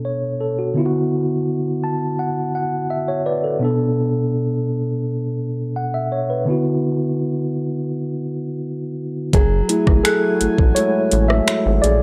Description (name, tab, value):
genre	contemporary R&B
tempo	84 BPM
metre	4/4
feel	straight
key	F# minor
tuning	A4 = 440 Hz
part	mellow tine electric piano	accompaniment	0.0-12.0 s	B2 to A5	-22 LUFS	equal	none
part	chorused pulse-width pad	sustained chords	9.3-12.0 s	F#3 to G#5	-30 LUFS	equal	sidechain pumping
part	nylon-string guitar	arpeggios	9.3-12.0 s	F#3 to G#4	-26 LUFS	equal	tape echo
part	rubbery square bass	bass	9.3-12.0 s	F#1 to A#1	-20 LUFS	equal	none
part	smooth R&B drum kit	drums	9.3-12.0 s	finger snaps, hi-hat, kick drum, rim click	-20 LUFS	equal	none
part	celesta	texture	10.1-11.2 s	F#6	-31 LUFS	equal	tape echo
room	little or no reverb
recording	dry, gritty hardware recording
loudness	-20 LUFS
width	mono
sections	0.0-9.3 A section; 9.3-12.0 B section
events	tine electric piano fill 1.5-3.6; tine electric piano solo 9.3-12.0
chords	0.0 Bm7; 0.8 D69; 3.6 Bm7; 6.5 D69; 9.3 F#m9